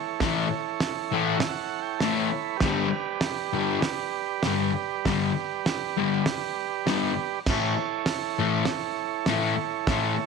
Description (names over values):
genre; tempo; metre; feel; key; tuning
garage rock duo or trio; 99 BPM; 4/4; straight; A mixolydian; A4 = 440 Hz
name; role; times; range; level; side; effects
overdriven combo organ; sustained chords; 0.0-10.3 s; E4 to B5; -29 LUFS; right 15 dB; none
fuzz guitar; riff; 0.2-10.1 s; G2 to A3; -26 LUFS; left 8 dB; distortion
cloth-damped thuddy drum kit; drums; 0.2-10.0 s; crash cymbal, hi-hat, kick drum, snare drum; -29 LUFS; right 3 dB; none
room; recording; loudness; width
light reverb, small room reverb; 1960s-style stereo with parts hard left and right; -24 LUFS; side -5 dB against mid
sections
0.0-10.3 A section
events
transistor combo organ fill 0.8-2.6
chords
0.0 A; 2.6 G; 7.5 A